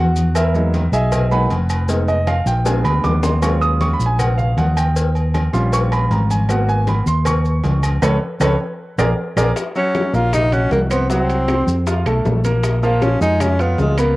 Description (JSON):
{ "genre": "Afro-Cuban jazz", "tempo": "156 BPM", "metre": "4/4", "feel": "straight", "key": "Eb minor from 9.6 s", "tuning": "A4 = 444 Hz", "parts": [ { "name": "clear concert grand piano", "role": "accompaniment", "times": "0.0-14.1 s", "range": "F3 to Gb6", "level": "-21 LUFS", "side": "right 2 dB", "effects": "none" }, { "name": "fingered electric bass", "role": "bass", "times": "0.0-14.2 s", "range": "E#1 to F2", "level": "-17 LUFS", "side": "equal", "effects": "none" }, { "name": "agogo bells and timbales", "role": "percussion", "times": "0.2-14.2 s", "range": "none", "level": "-30 LUFS", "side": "right 4 dB", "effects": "none" }, { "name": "congas", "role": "percussion", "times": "0.2-14.0 s", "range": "none", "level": "-27 LUFS", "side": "left 1 dB", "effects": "none" }, { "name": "maracas", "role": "percussion", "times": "0.2-14.2 s", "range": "none", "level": "-34 LUFS", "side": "left 5 dB", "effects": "none" }, { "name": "claves", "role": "percussion", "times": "0.4-14.2 s", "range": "none", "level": "-33 LUFS", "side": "left 3 dB", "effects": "none" }, { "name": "cowbell and bongos", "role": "percussion", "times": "0.4-14.2 s", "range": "none", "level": "-26 LUFS", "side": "left 3 dB", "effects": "none" }, { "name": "breathy tenor saxophone", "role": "melody", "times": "9.8-14.2 s", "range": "Ab3 to F4", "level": "-19 LUFS", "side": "equal", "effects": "none" } ], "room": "light reverb, small room ambience", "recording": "home recording on cassette", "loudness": "-15 LUFS", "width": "side -19 dB against mid", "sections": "0.0-9.6 A section; 9.6-14.2 B section", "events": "grand piano solo 0.0-9.6; drum fill 2.7-3.4, 8.6-9.6; band accent 8.0-9.6", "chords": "0.4 Emaj9#11; 1.9 Fm7b5; 2.7 A#7b9; 3.4 D#m11; 5.0 D#7; 6.5 G#m7; 8.0 Aadd9/C#; 8.8 A#7; 9.6 Ebm13 (rootless); 11.1 Csus4; 11.9 Fadd11; 12.6 Bbm7", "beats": "| 0.36 0.74 1.12 1.51 | 1.89 2.27 2.66 3.04 | 3.43 3.81 4.19 4.58 | 4.96 5.34 5.73 6.11 | 6.50 6.88 7.26 7.65 | 8.03 8.41 8.80 9.18 | 9.56 9.95 10.33 10.72 | 11.10 11.48 11.87 12.25 | 12.64 13.02 13.41 13.79" }